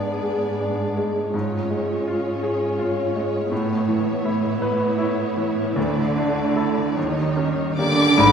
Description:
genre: cinematic, emotional film score for orchestra.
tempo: 49-56 BPM (dotted quarters).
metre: 6/8.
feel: rubato.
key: unclear.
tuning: A4 = 440 Hz.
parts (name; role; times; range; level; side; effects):
rich studio violin section; melody; 0.0-8.3 s; C#5 to D6; -28 LUFS; left 3 dB; none.
bright grand piano; accompaniment; 0.0-8.3 s; D2 to B4; -24 LUFS; left 1 dB; none.
warm studio viola section; accompaniment; 0.0-8.0 s; G3 to G#4; -28 LUFS; right 3 dB; none.
concert harp; arpeggios; 0.0-8.3 s; G#2 to C#5; -32 LUFS; left 5 dB; none.
warm studio cello section; bass; 0.0-8.3 s; G#2 to D#3; -25 LUFS; right 4 dB; none.
warm studio violin section; second line; 7.8-8.3 s; D5; -26 LUFS; right 1 dB; none.
mellow French horn section; sustained chords; 7.8-8.3 s; D4; -20 LUFS; right 3 dB; none.
clear oboe; second line; 8.2-8.3 s; none; barely audible; none; none.
mellow hollow silver concert flute; second line; 8.2-8.3 s; B5; -16 LUFS; left 2 dB; none.
dark studio double bass section; bass; 8.2-8.3 s; G#1; -26 LUFS; right 1 dB; none.
room: wet scoring stage reverb, RT60 1.6 s.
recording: heard from further back in the room.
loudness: -20 LUFS.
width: side -7 dB against mid.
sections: 0.0-8.2 A section.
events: none.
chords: 0.0 G#dim; 1.3 C#/G#; 3.5 Aadd9; 5.8 Dsus2; 7.0 D#7.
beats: 0.23 | 1.34 2.42 | 3.51 4.62 | 5.76 6.97 | 8.18.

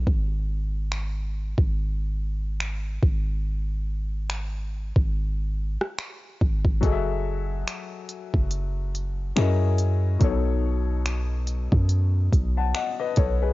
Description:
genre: contemporary R&B.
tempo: 71 BPM.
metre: 4/4.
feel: swing 58% on 16ths.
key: F# minor.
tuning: A4 = 440 Hz.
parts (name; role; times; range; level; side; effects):
warm 808-style bass; bass; 0.0-13.5 s; F#1 to F#2; -24 LUFS; equal; none.
smooth R&B drum kit; drums; 0.1-13.4 s; finger snaps, hi-hat, kick drum, rim click; -24 LUFS; equal; cassette tape.
warm baby grand piano; accompaniment; 6.8-13.5 s; B2 to A5; -29 LUFS; left 8 dB; cassette tape.
room: digital ambience.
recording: home recording on cassette, nothing above 7.5 kHz.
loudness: -23 LUFS.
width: side -18 dB against mid.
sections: 0.0-13.5 A section.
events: break 0.0-6.8.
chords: 0.1 N.C.; 6.8 F#m9; 9.4 F#13; 10.2 B7.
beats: | 0.07 0.91 1.76 2.60 | 3.45 4.29 5.14 5.98 | 6.83 7.67 8.52 9.36 | 10.21 11.05 11.90 12.74.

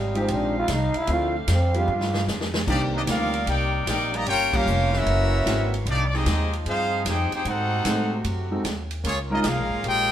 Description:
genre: jazz, big band swing.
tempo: 151 BPM.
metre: 4/4.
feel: swing 67% on 8ths.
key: C minor.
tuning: A4 = 438 Hz.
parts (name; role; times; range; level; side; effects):
growling trombone; melody; 0.0-2.3 s; G3 to F4; -26 LUFS; right 1 dB; none.
warm saxophone section; sustained chords; 0.0-10.1 s; C3 to F5; -36 LUFS; equal; none.
upright bass; bass; 0.0-10.1 s; F1 to A2; -26 LUFS; equal; none.
warm grand piano; accompaniment; 0.1-9.4 s; Eb3 to Bb4; -28 LUFS; equal; none.
swinging big-band drum kit; drums; 0.2-10.0 s; crash cymbal, hi-hat, kick drum, ride cymbal, snare drum; -31 LUFS; equal; none.
brilliant trumpet section; melody; 2.7-10.1 s; Bb3 to Bb5; -25 LUFS; left 1 dB; none.
warm trombone section; second line; 2.7-10.1 s; Eb3 to Ab4; -29 LUFS; equal; none.
room: moderate studio reverb, RT60 0.9 s.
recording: band playing live in one room.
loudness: -21 LUFS.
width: side -10 dB against mid.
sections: 0.0-2.7 A section; 2.7-10.1 B section.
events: trombone solo 0.0-2.7; drum fill 1.9-2.7; band accent 4.5.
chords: 0.0 Fm7; 1.1 Dm7; 1.9 G7; 2.7 Cm9; 4.3 Gm7b5; 5.1 F#7#11; 5.9 Fm9; 7.5 Ab7b9; 9.0 Db69.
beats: 0.29 0.69 | 1.08 1.48 1.88 2.28 | 2.68 3.08 3.47 3.87 | 4.27 4.67 5.07 5.46 | 5.86 6.26 6.66 7.06 | 7.45 7.85 8.25 8.65 | 9.05 9.45 9.84.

